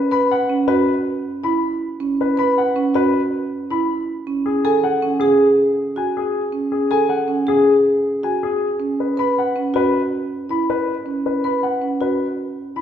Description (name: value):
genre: classical, minimalist pattern music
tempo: 159 BPM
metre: 6/4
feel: straight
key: unclear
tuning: A4 = 440 Hz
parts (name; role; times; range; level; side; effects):
- clear baby grand piano; melody; 0.0-12.8 s; G#4 to B5; -21 LUFS; left 6 dB; none
- marimba with medium mallets; arpeggios; 0.1-12.8 s; C#4 to B4; -18 LUFS; right 3 dB; none
room: wet recital hall reverb, RT60 1.7 s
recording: heard from further back in the room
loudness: -17 LUFS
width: side -9 dB against mid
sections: 0.0-12.8 A section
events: none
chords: 0.0 Bsus2; 4.1 A6; 8.6 Bsus2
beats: 0.30 0.68 1.06 1.44 | 1.81 2.19 2.57 2.95 3.32 3.70 | 4.08 4.46 4.83 5.21 5.59 5.97 | 6.34 6.72 7.10 7.47 7.85 8.23 | 8.61 8.98 9.36 9.74 10.12 10.49 | 10.87 11.25 11.63 12.00 12.38 12.76